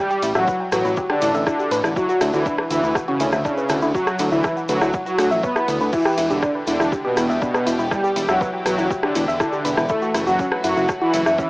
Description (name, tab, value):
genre	melodic techno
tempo	121 BPM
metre	4/4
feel	straight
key	E dorian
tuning	A4 = 440 Hz
part	mellow synth brass	melody	0.0-11.5 s	B3 to B4	-23 LUFS	equal	chorus, sidechain pumping, analog delay
part	soft supersaw	second line	0.0-11.5 s	B2 to B3	-26 LUFS	equal	cassette tape, sidechain pumping, analog delay
part	woody wave-folded pluck	arpeggios	0.0-11.5 s	C#4 to G6	-23 LUFS	equal	chorus, sidechain pumping, analog delay
part	egg shaker	percussion	0.1-11.5 s	none	-39 LUFS	left 1 dB	none
part	fat analog bass	bass	0.2-11.4 s	E1 to D2	-24 LUFS	equal	sidechain pumping
part	punchy analog drum machine	drums	0.2-11.4 s	crash cymbal, hi-hat, ride cymbal, rim click	-26 LUFS	equal	overdrive, cassette tape
part	electronic kick drum	drums	0.5-11.5 s	none	-29 LUFS	equal	overdrive, cassette tape
part	rich chamber string section	sustained chords	5.9-11.5 s	E3 to G4	-30 LUFS	equal	sidechain pumping
room	moderate spring reverb, RT60 1.9 s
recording	home recording on cassette, small speaker sound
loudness	-17 LUFS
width	side -23 dB against mid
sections	0.0-11.5 A section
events	none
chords	0.0 Asus4; 2.0 Dmaj7; 5.9 Em7; 9.9 F#m7